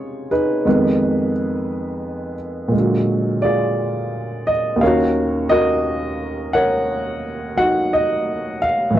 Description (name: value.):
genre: solo jazz.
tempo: 58 BPM.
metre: 4/4.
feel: swing 66% on 8ths.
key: unclear.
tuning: A4 = 439 Hz.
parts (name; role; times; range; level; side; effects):
dark upright piano; solo; 0.0-9.0 s; Eb2 to Gb5; -17 LUFS; equal; none.
room: moderate booth ambience, RT60 0.3 s.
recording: dry, close 1970s-style studio recording, lossy compression artefacts.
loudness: -17 LUFS.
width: side -12 dB against mid.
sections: 0.0-9.0 A section.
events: none.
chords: 0.0 Dbmaj9; 0.7 Fm7b5; 2.7 Bb7b13; 4.8 Ebm7.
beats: | 0.66 1.70 2.73 3.77 | 4.81 5.85 6.89 7.92 | 8.96.